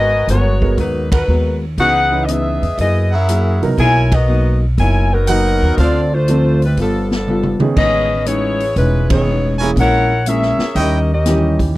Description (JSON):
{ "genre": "jazz, big band swing", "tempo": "120 BPM", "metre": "4/4", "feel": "swing 68% on 8ths", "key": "G# minor", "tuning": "A4 = 441 Hz", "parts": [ { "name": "warm saxophone section", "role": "melody", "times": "0.0-11.6 s", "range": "F3 to G#5", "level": "-17 LUFS", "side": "left 1 dB", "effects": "none" }, { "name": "vintage hollow-body jazz guitar", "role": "accompaniment", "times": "0.0-11.6 s", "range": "A2 to A#4", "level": "-21 LUFS", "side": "left 2 dB", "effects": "none" }, { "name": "brilliant trumpet section", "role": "stabs", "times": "0.0-6.0, 9.6-11.0 s", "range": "B3 to G#5", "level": "-22 LUFS", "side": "right 3 dB", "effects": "none" }, { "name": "upright bass", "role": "bass", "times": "0.0-11.7 s", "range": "E1 to F#2", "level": "-16 LUFS", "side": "equal", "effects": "none" }, { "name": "swinging big-band drum kit", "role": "drums", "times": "0.3-11.7 s", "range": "crash cymbal, hi-hat, kick drum, ride cymbal, snare drum, toms", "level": "-20 LUFS", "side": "equal", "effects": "none" }, { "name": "warm baby grand piano", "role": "accompaniment", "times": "0.6-11.8 s", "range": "D#3 to B4", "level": "-20 LUFS", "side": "right 4 dB", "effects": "none" } ], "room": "little or no reverb", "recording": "dry, close 1970s-style studio recording", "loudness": "-12 LUFS", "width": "side -17 dB against mid", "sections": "0.0-11.8 A section", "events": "band accent 1.0, 4.0, 9.0; drum fill 7.3-7.8", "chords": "0.0 G#m9; 1.8 C#m9; 2.8 F#9; 3.8 Bmaj7; 5.8 Dm7; 6.8 G9; 7.8 Amaj9#11; 9.8 A#m7b5; 10.8 D#7b9" }